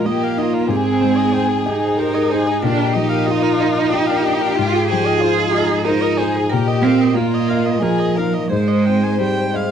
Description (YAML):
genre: neoclassical piano and strings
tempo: 92 BPM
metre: 3/4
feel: rubato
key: unclear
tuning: A4 = 440 Hz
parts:
  - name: warm chamber violin section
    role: melody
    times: 0.0-9.7 s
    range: Eb4 to C5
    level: -21 LUFS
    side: left 5 dB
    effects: none
  - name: warm cello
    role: second line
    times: 0.0-9.7 s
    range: F3 to Ab4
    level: -18 LUFS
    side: right 6 dB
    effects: none
  - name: felt-muted upright piano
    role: accompaniment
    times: 0.0-9.7 s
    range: Ab2 to G5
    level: -21 LUFS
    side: left 6 dB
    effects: none
  - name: warm viola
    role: accompaniment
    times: 0.0-9.7 s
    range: F4 to Ab5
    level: -26 LUFS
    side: right 2 dB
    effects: none
  - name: marimba with hard mallets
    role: arpeggios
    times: 0.1-9.6 s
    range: F4 to Bb5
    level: -27 LUFS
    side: right 5 dB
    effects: slapback echo
room: little or no reverb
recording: dry, close 1970s-style studio recording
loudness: -15 LUFS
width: side -8 dB against mid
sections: 0.0-9.7 A section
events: none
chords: 0.0 Bbsus4; 0.7 Abmaj7; 2.6 Bbsus4; 4.6 Fm7/Ab; 6.5 Bbsus4; 8.5 Abmaj7